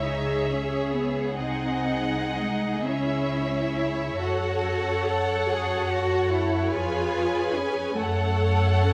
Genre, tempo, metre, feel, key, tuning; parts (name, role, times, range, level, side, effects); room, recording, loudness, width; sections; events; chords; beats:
classical, slow romantic movement for string orchestra; 39-49 BPM (dotted quarters); 6/8; rubato; C# minor; A4 = 441 Hz
warm symphonic violin section; melody; 0.0-8.9 s; E5 to G#5; -35 LUFS; equal
rich symphonic violin section; second line; 0.0-8.9 s; G#4 to D#5; -33 LUFS; equal
rich symphonic cello section; bass; 0.0-8.9 s; G#3 to A4; -31 LUFS; equal
rich symphonic double bass section; bass; 0.0-8.9 s; B#1 to F#2; -31 LUFS; equal
warm symphonic viola section; accompaniment; 0.1-8.9 s; D#4 to A4; -33 LUFS; equal
moderate scoring stage reverb, RT60 1.6 s; -26 LUFS; mono
0.0-8.9 A section
0.0 C#m; 1.4 G#7/B#; 2.9 C#m; 4.2 F#m; 6.8 C#7/E#; 8.0 F#m
0.06 | 1.39 2.86 | 4.21 5.50 | 6.75 8.00